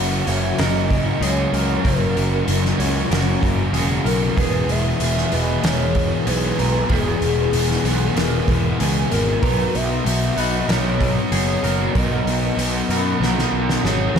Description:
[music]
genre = rock, shoegaze and dream pop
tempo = 95 BPM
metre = 4/4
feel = straight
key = E lydian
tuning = A4 = 440 Hz
[part]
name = pure breathy sine lead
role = melody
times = 0.0-14.2 s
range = G#4 to F#5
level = -26 LUFS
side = equal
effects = chorus, ping-pong delay
[part]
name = electric guitar through a small old amp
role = arpeggios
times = 0.0-14.2 s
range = G#4 to A#5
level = -28 LUFS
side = left 1 dB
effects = analog chorus, ping-pong delay
[part]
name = overdriven electric guitar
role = riff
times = 0.0-14.2 s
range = E2 to G#4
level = -25 LUFS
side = right 7 dB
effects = reverse reverb
[part]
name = thick fuzz guitar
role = riff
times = 0.0-14.2 s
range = E2 to B3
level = -23 LUFS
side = left 6 dB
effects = distortion, analog chorus
[part]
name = fuzz picked electric bass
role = bass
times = 0.0-14.2 s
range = E1 to F#2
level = -22 LUFS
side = right 1 dB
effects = overdrive
[part]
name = loose indie drum kit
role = drums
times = 0.3-14.2 s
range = hi-hat, kick drum, snare drum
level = -25 LUFS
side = equal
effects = none
[sound]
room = moderate plate reverb, RT60 2.2 s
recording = dreamy mix soaked in reverb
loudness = -17 LUFS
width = side -7 dB against mid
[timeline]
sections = 0.0-14.2 A section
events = drum fill 13.2-14.2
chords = 0.0 F#7; 4.4 E; 9.4 Bmaj9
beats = 0.59 1.23 | 1.85 2.49 3.12 3.75 | 4.38 5.01 5.64 6.27 | 6.90 7.53 8.16 8.80 | 9.43 10.06 10.69 11.32 | 11.95 12.59 13.21 13.85

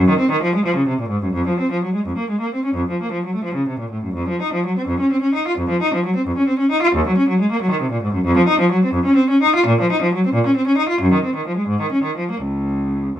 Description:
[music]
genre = classical, baroque-style suite movement for unaccompanied cello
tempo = 87 BPM (dotted quarters)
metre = 12/8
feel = uneven beats, rubato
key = Db major from 4.2 s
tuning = A4 = 439 Hz
[part]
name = rich cello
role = solo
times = 0.0-13.2 s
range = Db2 to F4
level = -16 LUFS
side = equal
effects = none
[sound]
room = light reverb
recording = minimal, uncompressed stereo recording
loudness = -16 LUFS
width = side -11 dB against mid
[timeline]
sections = 0.0-13.2 A section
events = none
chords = none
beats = 0.65 | 1.35 2.05 2.76 3.46 | 4.19 4.89 5.57 6.24 | 6.92 7.59 8.26 8.93 | 9.63 10.32 11.00 11.70 | 12.42 13.17

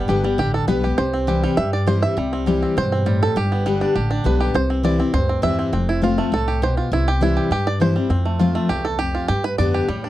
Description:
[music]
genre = bluegrass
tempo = 202 BPM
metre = 4/4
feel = straight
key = C major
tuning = A4 = 442 Hz
[part]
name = bluegrass banjo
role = melody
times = 0.0-10.1 s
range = G3 to E5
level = -22 LUFS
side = right 4 dB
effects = none
[part]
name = picked steel-string acoustic guitar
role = accompaniment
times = 0.0-10.1 s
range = E2 to G4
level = -21 LUFS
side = left 3 dB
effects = none
[part]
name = upright bass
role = bass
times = 0.1-10.1 s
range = F1 to G2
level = -22 LUFS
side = equal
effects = none
[sound]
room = small room ambience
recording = dry, close 1970s-style studio recording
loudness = -17 LUFS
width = side -14 dB against mid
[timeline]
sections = 0.0-5.7 A section; 5.7-10.1 A section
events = five-string banjo solo 0.0-10.1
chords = 0.0 G; 1.0 C; 3.4 G; 4.5 C; 5.7 F; 6.9 C; 8.1 F; 9.3 G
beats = 0.09 0.39 0.69 | 0.98 1.28 1.58 1.88 | 2.17 2.47 2.77 3.06 | 3.36 3.66 3.95 4.25 | 4.55 4.84 5.14 5.44 | 5.73 6.03 6.33 6.62 | 6.92 7.21 7.51 7.81 | 8.11 8.40 8.70 9.00 | 9.29 9.59 9.89

